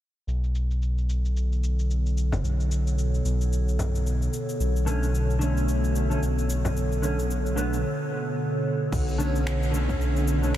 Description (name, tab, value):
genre	organic downtempo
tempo	111 BPM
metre	4/4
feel	swing 58% on 16ths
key	B minor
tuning	A4 = 438 Hz
part	warbly tape-like pad	sustained chords	1.2-10.6 s	B2 to C#5	-29 LUFS	right 1 dB	chorus, built-in reverb, sidechain pumping
part	smooth synth bass	bass	0.3-10.6 s	F#1 to B1	-24 LUFS	equal	none
part	deep house drum kit	drums	0.3-10.6 s	cabasa, crash cymbal, finger snaps	-40 LUFS	left 2 dB	overdrive, low-pass filter on perc, studio reverb, low-pass filter on cymbals, low-pass filter on snare
part	frame drum	percussion	2.3-6.7 s	none	-36 LUFS	left 1 dB	none
part	mellow electric guitar	accompaniment	4.9-10.5 s	D3 to C#4	-30 LUFS	equal	analog chorus, sidechain pumping, diffuse ambient delay
part	electronic kick drum	drums	8.9-10.0 s	none	-30 LUFS	equal	overdrive, studio reverb
room	light reverb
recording	none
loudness	-23 LUFS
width	side -12 dB against mid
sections	0.3-8.9 A section; 8.9-10.6 B section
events	filter sweep on analog synth bass 0.3-8.9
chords	0.3 Bm7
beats	| 0.28 0.82 1.36 1.90 | 2.44 2.98 3.52 4.06 | 4.60 5.14 5.68 6.22 | 6.76 7.30 7.84 8.38 | 8.93 9.47 10.01 10.55